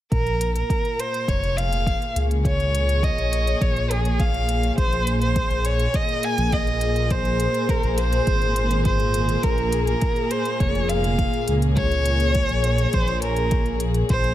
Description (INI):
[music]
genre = piano and strings electronica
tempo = 103 BPM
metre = 4/4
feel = straight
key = Bb minor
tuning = A4 = 439 Hz
[part]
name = rich violin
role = melody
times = 0.1-14.3 s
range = Ab4 to Ab5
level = -25 LUFS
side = right 1 dB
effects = none
[part]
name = dark chamber string section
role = sustained chords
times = 0.1-14.3 s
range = Bb2 to Db5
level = -26 LUFS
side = left 1 dB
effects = sidechain pumping
[part]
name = dark detuned saw bass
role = bass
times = 0.1-14.3 s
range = F1 to Db2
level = -23 LUFS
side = equal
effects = sidechain pumping
[part]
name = electronic hi-hat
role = drums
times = 0.1-14.3 s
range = none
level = -36 LUFS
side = left 2 dB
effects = none
[part]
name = electronic kick drum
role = drums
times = 0.1-14.2 s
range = none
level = -24 LUFS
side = equal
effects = none
[sound]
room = light reverb, studio reverb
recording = none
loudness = -19 LUFS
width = side -13 dB against mid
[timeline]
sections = 0.1-14.3 A section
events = none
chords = 0.1 Bbm7; 4.8 Abadd9/Bb; 9.4 Bbm7